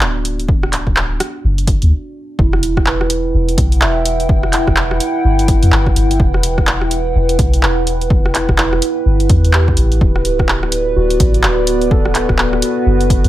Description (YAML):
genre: future garage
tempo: 126 BPM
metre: 4/4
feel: swing 61% on 16ths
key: E minor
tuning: A4 = 439 Hz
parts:
  - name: mellow tine electric piano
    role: accompaniment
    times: 0.0-13.3 s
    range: D4 to E5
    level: -22 LUFS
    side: right 5 dB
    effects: sidechain pumping, dub echo
  - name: dark analog pad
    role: sustained chords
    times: 0.0-13.3 s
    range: B3 to G5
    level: -20 LUFS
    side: equal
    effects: chorus, phaser, sidechain pumping
  - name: soft 808-style bass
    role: bass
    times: 0.0-13.3 s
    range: D1 to E2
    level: -16 LUFS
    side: equal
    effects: sidechain pumping
  - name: deep house drum kit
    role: drums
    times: 0.0-13.3 s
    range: handclaps, hi-hat, rim click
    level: -18 LUFS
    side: equal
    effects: overdrive, small room reverb
  - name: electronic kick drum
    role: drums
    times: 0.5-13.2 s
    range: none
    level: -16 LUFS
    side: equal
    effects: overdrive, small room reverb
room: little or no reverb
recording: none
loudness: -12 LUFS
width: side -14 dB against mid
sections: 0.0-2.4 A section; 2.4-13.3 B section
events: stop 1.9-2.4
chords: 0.0 Bm/D; 2.4 Em; 10.0 Bm7/D